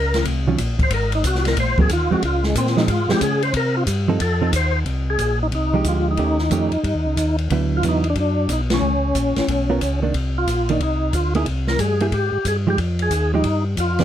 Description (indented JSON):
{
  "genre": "soul jazz organ trio",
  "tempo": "182 BPM",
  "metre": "4/4",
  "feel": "swing 64% on 8ths",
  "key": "unclear",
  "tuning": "A4 = 442 Hz",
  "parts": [
    { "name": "percussive tonewheel organ", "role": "melody", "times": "0.0-14.0 s", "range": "Ab3 to C5", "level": "-22 LUFS", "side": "equal", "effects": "slow rotary speaker, overdrive, chorus vibrato" },
    { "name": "tonewheel organ", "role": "bass", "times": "0.0-14.0 s", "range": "Ab1 to Db3", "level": "-21 LUFS", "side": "equal", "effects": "slow rotary speaker" },
    { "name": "open jazz drum kit", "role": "drums", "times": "0.1-14.0 s", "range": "hi-hat, kick drum, ride cymbal, snare drum", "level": "-25 LUFS", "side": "left 2 dB", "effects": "none" },
    { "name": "hollow-body jazz guitar", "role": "accompaniment", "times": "0.5-14.0 s", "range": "D3 to Bb4", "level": "-21 LUFS", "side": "right 5 dB", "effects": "none" }
  ],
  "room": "little or no reverb",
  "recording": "close, detailed microphones",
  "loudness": "-17 LUFS",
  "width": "side -11 dB against mid",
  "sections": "0.0-4.9 A section; 4.9-14.0 B section",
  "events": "tonewheel organ solo 0.0-4.9; band accent 8.7",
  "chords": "0.0 Eb7(no3) (rootless); 0.9 Ab9; 2.2 Dbmaj7; 3.5 Cmadd11; 4.2 F7; 4.9 Fm9; 6.2 Eb7#11; 7.5 D69; 8.8 Db7(no3); 10.1 Cm9; 11.5 C5; 12.8 Fm9"
}